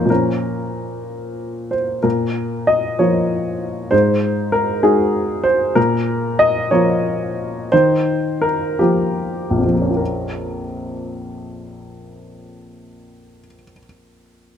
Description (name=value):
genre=neoclassical minimalist piano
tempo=49-66 BPM (dotted quarters)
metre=6/8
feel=rubato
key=Bb minor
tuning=A4 = 440 Hz
part: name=warm baby grand piano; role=solo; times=0.0-14.6 s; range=Bb1 to Eb5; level=-16 LUFS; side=equal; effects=none
room=light reverb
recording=none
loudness=-16 LUFS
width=side -8 dB against mid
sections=0.0-2.0 A section; 2.0-10.0 B section; 10.0-14.6 C section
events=slowing down 4.8-10.0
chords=0.0 Bbm; 3.9 Ab7; 5.8 Bbm; 7.7 Ebadd9; 10.0 Bbm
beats=| 0.09 1.07 | 2.04 2.99 | 3.92 4.84 | 5.76 6.71 | 7.72 8.80 | 9.99 11.21 | 12.43 13.63